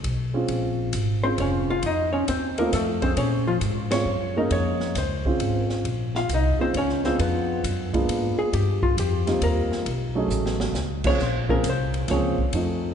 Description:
jazz, small-group swing and bop; 134 BPM; 3/4; swing 66% on 8ths; Bb minor; A4 = 442 Hz
upright bass; bass; 0.0-12.9 s; F1 to Bb2; -26 LUFS; equal
open jazz drum kit; drums; 0.0-12.7 s; crash cymbal, hi-hat, kick drum, ride cymbal, snare drum; -31 LUFS; equal
dark upright piano; accompaniment; 0.3-12.9 s; F3 to Ab4; -27 LUFS; right 1 dB
hollow-body jazz guitar; melody; 1.2-12.5 s; F3 to F5; -26 LUFS; left 2 dB
wet church reverb, RT60 2.9 s; recorded in a church or concert hall, nothing above 10.3 kHz; -21 LUFS; side -8 dB against mid
0.0-5.8 A section; 5.8-12.9 B section
band accent 3.8; hollow-body jazz guitar solo 5.8-12.9; drum fill 10.3-10.8
0.5 Bbm9; 1.8 F7; 3.2 Bbm9; 7.2 Bb7b9; 8.5 Eb69; 9.9 B13; 11.2 Bbm9
0.04 | 0.49 0.94 1.38 | 1.83 2.27 2.72 | 3.17 3.62 4.06 | 4.51 4.95 5.40 | 5.85 6.29 6.74 | 7.19 7.63 8.08 | 8.52 8.97 9.42 | 9.86 10.31 10.75 | 11.20 11.64 12.09 | 12.54

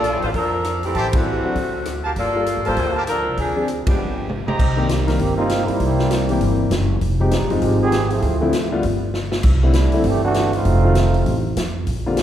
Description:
jazz, big band swing; 198 BPM; 4/4; swing 61% on 8ths; G minor, C minor from 4.6 s; A4 = 438 Hz
dark saxophone section; melody; 0.0-4.3 s; E3 to D5; -22 LUFS; left 1 dB
warm concert grand piano; accompaniment; 0.0-12.2 s; D3 to Bb4; -24 LUFS; left 2 dB
clear trumpet section; stabs; 0.0-4.9 s; F4 to Bb5; -27 LUFS; right 2 dB
upright bass; bass; 0.0-12.2 s; F1 to F2; -21 LUFS; equal
swinging big-band drum kit; drums; 0.0-12.2 s; crash cymbal, hi-hat, kick drum, ride cymbal, rim click, snare drum, toms; -24 LUFS; equal
clear trombone section; second line; 4.9-12.2 s; Eb3 to Ab4; -22 LUFS; right 3 dB
wet concert hall reverb, RT60 2.1 s; recorded in a church or concert hall; -16 LUFS; side -11 dB against mid
0.0-4.6 A section; 4.6-12.2 B section
band accent 1.1, 3.8; drum fill 4.3-4.6, 9.1-9.4; trombone section solo 4.6-12.2
0.0 Bbmaj7; 1.0 Am7; 1.6 D7; 2.2 Gm9; 3.4 Dm7b5; 4.0 G7; 5.8 C7; 7.0 Fm9; 8.2 Dm9; 8.8 N.C.; 9.4 C69; 10.7 F7
0.04 0.34 0.65 | 0.95 1.25 1.56 1.86 | 2.17 2.47 2.77 3.08 | 3.38 3.68 3.98 4.29 | 4.59 4.89 5.20 5.50 | 5.80 6.11 6.41 6.71 | 7.02 7.32 7.62 7.93 | 8.23 8.53 8.84 9.14 | 9.44 9.74 10.05 10.35 | 10.65 10.96 11.26 11.56 | 11.87 12.17

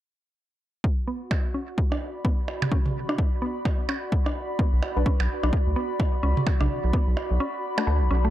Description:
minimal techno; 128 BPM; 4/4; swing 60% on 16ths; B minor; A4 = 440 Hz
electronic kick drum; drums; 0.8-7.0 s; -24 LUFS; equal; overdrive
warbly tape-like pad; texture; 1.3-8.3 s; F#4 to B5; -32 LUFS; equal; chorus, built-in reverb, sidechain pumping
mallet-like synth pluck; riff; 1.1-8.3 s; A3 to D4; -32 LUFS; equal; chorus, sidechain pumping, dub echo
electronic percussion blips and toms; percussion; 1.3-7.9 s; -31 LUFS; right 3 dB
round analog bass; bass; 4.7-8.3 s; B1 to D2; -22 LUFS; equal; sidechain pumping
filtered dub chord stab; stabs; 5.0-7.8 s; D4 to B4; -34 LUFS; equal; phaser, cassette tape, dub echo
light reverb, digital ambience; dark, warm production; -23 LUFS; side -13 dB against mid
0.8-8.3 A section
filter sweep on synth arpeggio sound 0.8-8.3; kick drops out 7.4-8.3
0.8 Bm
| 0.84 1.31 1.78 2.25 | 2.72 3.19 3.65 4.12 | 4.59 5.06 5.53 6.00 | 6.47 6.93 7.40 7.87

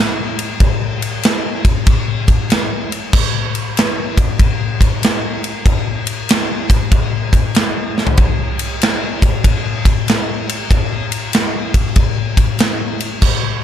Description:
metal; 95 BPM; 4/4; swing 65% on 8ths
big rock drum kit; drums; 0.4-13.4 s; crash cymbal, kick drum, ride cymbal, snare drum, toms; -14 LUFS; equal
little or no reverb; -13 LUFS; side -10 dB against mid
0.0-8.2 A section; 8.2-13.6 B section
drum fill 7.9-8.2
| 0.60 1.23 1.86 2.50 | 3.13 3.76 4.39 5.02 | 5.66 6.29 6.92 7.55 | 8.18 8.81 9.44 10.07 | 10.70 11.33 11.96 12.59 | 13.22

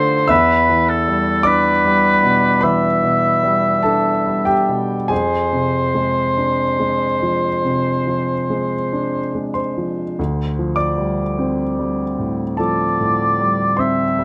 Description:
classical, impressionist duo for oboe and grand piano; 47-53 BPM; 4/4; rubato; A4 = 440 Hz
warm oboe; melody; 0.0-14.2 s; A4 to E5; -20 LUFS; equal
warm concert grand piano; accompaniment; 0.0-14.2 s; D2 to E6; -20 LUFS; equal
light reverb; close, detailed microphones; -18 LUFS; mono
0.0-14.2 A section
0.3 Em7; 5.1 Fm6; 10.2 Dm7
| 0.30 1.46 2.63 3.85 | 5.11 6.37 7.64 8.92 | 10.19 11.39 12.60 13.80

